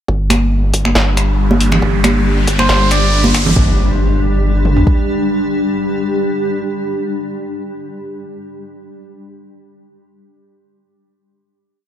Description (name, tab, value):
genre	deep dubstep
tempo	138 BPM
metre	4/4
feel	half-time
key	unclear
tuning	A4 = 443 Hz
part	granular cloud pad	sustained chords	1.1-7.8 s	G3 to G4	-19 LUFS	left 1 dB	built-in reverb
part	soft dub sub bass	bass	0.1-4.8 s	G1	-15 LUFS	equal	none
part	deep house drum kit	drums	0.1-5.0 s	kick drum, toms	-15 LUFS	equal	overdrive, high-pass filter on kick, high-pass filter on toms, high-pass filter on room
part	riser and impact	sound effects	0.7-8.2 s	none	-22 LUFS	right 1 dB	none
part	deep house drum kit	drums	0.3-3.4 s	finger snaps, hi-hat, snare drum	-19 LUFS	left 1 dB	overdrive, high-pass filter on snare, high-pass filter on hats, high-pass filter on room
part	congas	percussion	0.3-3.5 s	none	-18 LUFS	right 1 dB	dub echo
part	melodica	melody	2.6-3.2 s	C5 to D5	-21 LUFS	right 1 dB	vintage 12-bit sampler grit, dub echo
room	light reverb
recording	none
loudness	-12 LUFS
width	side -10 dB against mid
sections	0.1-3.6 build; 3.6-7.0 final chord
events	build-up 0.1-3.6; riser 0.7-3.6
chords	0.1 G5